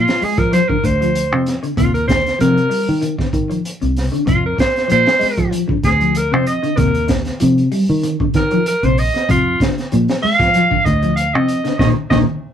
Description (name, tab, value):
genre	afrobeat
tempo	96 BPM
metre	4/4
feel	swing 54% on 16ths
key	F dorian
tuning	A4 = 440 Hz
part	bright alto saxophone	melody	0.0-12.2 s	F4 to F5	-17 LUFS	right 1 dB	none
part	semi-hollow electric guitar	arpeggios	0.0-12.2 s	Bb2 to Ab3	-20 LUFS	left 2 dB	phaser
part	fingered electric bass	bass	0.0-12.2 s	Bb1 to F3	-18 LUFS	equal	none
part	crunchy breakbeat drum kit	drums	0.1-12.3 s	hi-hat, kick drum, snare drum	-20 LUFS	equal	none
room	moderate small room ambience, RT60 0.5 s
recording	rough rehearsal-room recording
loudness	-13 LUFS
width	side -9 dB against mid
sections	0.0-12.5 A section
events	alto saxophone solo 0.0-12.5; band accent 11.8-12.5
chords	0.0 F5; 1.8 Ebmaj7(no3); 4.3 F5; 6.8 Ebmaj7(no3); 9.3 F5; 11.8 Eb5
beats	0.53 1.15 | 1.78 2.40 3.03 3.65 | 4.28 4.90 5.53 6.16 | 6.78 7.41 8.04 8.66 | 9.29 9.91 10.54 11.17 | 11.80